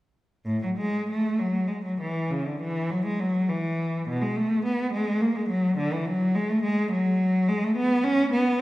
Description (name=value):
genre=classical, baroque-style suite movement for unaccompanied cello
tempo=88-110 BPM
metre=3/4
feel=rubato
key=unclear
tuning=A4 = 440 Hz
part: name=rich cello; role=solo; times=0.5-8.6 s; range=A2 to C#4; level=-23 LUFS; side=equal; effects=none
room=wet recital hall reverb, RT60 1.6 s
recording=heard from further back in the room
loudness=-23 LUFS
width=side -17 dB against mid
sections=0.5-8.6 A section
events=none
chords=none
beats=| 0.45 1.09 1.69 | 2.29 2.89 3.48 | 4.06 4.64 5.21 | 5.79 6.36 6.92 | 7.49 8.06 8.61